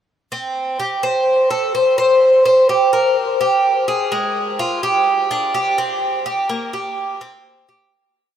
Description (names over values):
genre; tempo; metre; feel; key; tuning
latin; 126 BPM; 4/4; straight; unclear; A4 = 440 Hz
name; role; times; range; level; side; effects
Cuban tres; solo; 0.3-7.9 s; Ab3 to C5; -15 LUFS; equal; none
room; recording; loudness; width
wet huge ambient reverb, RT60 7.6 s; in a vast, echoing space; -14 LUFS; side -9 dB against mid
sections
0.3-7.9 A section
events
fade-out 6.0-7.9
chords
none